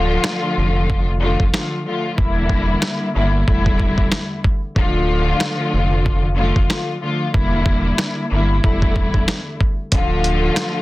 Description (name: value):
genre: hip hop, boom-bap hip-hop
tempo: 93 BPM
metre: 4/4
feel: swing 58% on 16ths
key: D minor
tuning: A4 = 444 Hz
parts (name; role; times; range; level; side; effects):
- dark studio string section; accompaniment; 0.0-10.8 s; E2 to F4; -20 LUFS; left 2 dB; cassette tape, high-pass filter, low-pass filter
- sub bass with octave; bass; 0.0-10.5 s; D1 to G1; -20 LUFS; equal; none
- dusty soul sampler-style drum kit; drums; 0.2-10.7 s; hi-hat, kick drum, snare drum; -18 LUFS; equal; none
room: light reverb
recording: dense, heavily limited modern master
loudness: -16 LUFS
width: side -18 dB against mid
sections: 0.0-10.8 A section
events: break 0.0-9.9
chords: 0.0 Dm; 2.2 Em7b5; 3.5 A7sus4/E; 4.8 Dm; 7.3 Em7b5; 8.6 A7sus4/E; 9.9 Dm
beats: 0.25 0.89 1.54 | 2.18 2.83 3.47 4.12 | 4.76 5.41 6.05 6.70 | 7.34 7.99 8.63 9.28 | 9.92 10.57